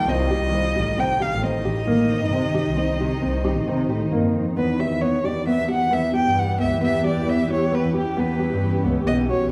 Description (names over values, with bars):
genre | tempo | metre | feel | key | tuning
contemporary instrumental, chamber music in an uneven meter | 134 BPM | 5/4 | straight | unclear | A4 = 440 Hz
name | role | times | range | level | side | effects
warm violin | melody | 0.0-9.5 s | G4 to G5 | -27 LUFS | equal | none
granular cloud pad | sustained chords | 0.0-9.5 s | Eb3 to G4 | -30 LUFS | equal | built-in reverb
warm double bass | bass | 0.0-9.5 s | A1 to C3 | -27 LUFS | equal | none
nylon-string guitar | arpeggios | 0.1-9.5 s | A#3 to G4 | -27 LUFS | equal | none
room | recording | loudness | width
wet recital hall reverb, RT60 1.4 s | none | -22 LUFS | mono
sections
0.0-4.6 A section; 4.6-9.5 B section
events
none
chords
0.1 Cm; 4.6 Em